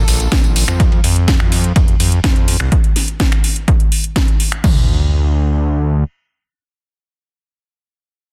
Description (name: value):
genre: progressive house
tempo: 125 BPM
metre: 4/4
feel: straight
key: unclear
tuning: A4 = 440 Hz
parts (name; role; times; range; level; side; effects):
- supersaw pad; sustained chords; 0.0-0.8 s; D3 to A4; -33 LUFS; equal; phaser, sidechain pumping
- fat analog bass; bass; 0.0-6.0 s; F1 to F2; -18 LUFS; equal; tube saturation, sidechain pumping
- dusty soul sampler-style drum kit; drums; 0.1-2.6 s; hi-hat, ride cymbal, snare drum; -30 LUFS; equal; sidechain pumping on cymbals, high-pass filter on cymbals, high-pass filter on snare, sidechain pumping on hats, high-pass filter on hats, high-pass filter on room
- house drum kit; drums; 0.1-4.6 s; finger snaps, hi-hat, snare drum; -22 LUFS; equal; overdrive
- tambourine; percussion; 0.1-0.8 s; none; -28 LUFS; equal; none
- big-room dance drum kit; drums; 0.3-4.8 s; crash cymbal, kick drum, toms; -16 LUFS; equal; overdrive
room: little or no reverb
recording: dense, heavily limited modern master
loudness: -14 LUFS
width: mono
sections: 0.0-4.6 A section; 4.6-8.3 B section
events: drop 0.0-4.6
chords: 0.0 Bb6; 0.8 F5; 2.7 N.C.